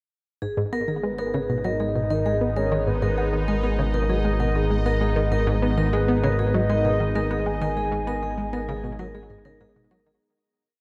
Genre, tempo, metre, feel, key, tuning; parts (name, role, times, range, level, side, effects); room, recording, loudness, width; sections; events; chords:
ambient, sequencer-driven space music; 98 BPM; 4/4; straight; G# minor; A4 = 439 Hz
sweeping resonant pad; sustained chords; 0.4-10.2 s; G#3 to D#4; -34 LUFS; equal; chorus, shimmer reverb
vibraphone with medium hard mallets; arpeggios; 0.4-10.2 s; G#4 to A#4; -32 LUFS; equal; shimmer reverb, delay
tight sequenced synth; riff; 0.4-10.1 s; G#2 to B3; -30 LUFS; equal; chorus, shimmer reverb, delay
fat analog bass; bass; 0.4-10.2 s; G#1; -28 LUFS; equal
bubbling stepped-filter texture; texture; 0.4-10.2 s; D#4 to D#5; -41 LUFS; equal; chorus, built-in reverb, shimmer reverb
soft octave-layered synth lead; melody; 1.0-9.6 s; B4 to G#5; -31 LUFS; equal; chorus, phaser, shimmer reverb, delay
moderate plate reverb, RT60 3.2 s; -24 LUFS; mono
0.4-10.2 A section
fade-in on analog synth pad 0.4-10.2; fade-in on synth texture 0.4-10.2; fade-out 7.0-10.2
0.4 G#m